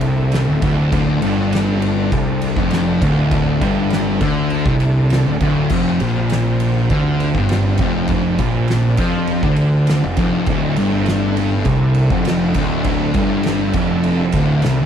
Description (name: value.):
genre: stoner and doom metal.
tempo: 101 BPM.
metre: 4/4.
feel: straight.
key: D minor.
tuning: A4 = 440 Hz.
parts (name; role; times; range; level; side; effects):
bright tonewheel organ; sustained chords; 0.0-14.9 s; D3 to G4; -28 LUFS; right 2 dB; slow rotary speaker, chorus vibrato.
thick fuzz guitar; riff; 0.0-14.9 s; D2 to F3; -18 LUFS; left 6 dB; distortion.
thick fuzz guitar; riff; 0.0-14.9 s; D2 to F3; -20 LUFS; right 9 dB; distortion.
fuzz picked electric bass; bass; 0.0-14.9 s; D1 to F2; -22 LUFS; equal; overdrive.
oversized low-tuned drum kit; drums; 0.0-14.8 s; crash cymbal, kick drum, ride cymbal, snare drum; -22 LUFS; equal; none.
room: little or no reverb.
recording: none.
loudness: -14 LUFS.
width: side -8 dB against mid.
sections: 0.0-14.9 A section.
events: none.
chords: 0.0 Dm; 5.7 F5; 10.5 Dm.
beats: 0.33 | 0.93 1.53 2.12 2.72 | 3.32 3.92 4.51 5.11 | 5.71 6.31 6.90 7.50 | 8.09 8.69 9.29 9.88 | 10.47 11.07 11.66 12.26 | 12.85 13.45 14.04 14.64.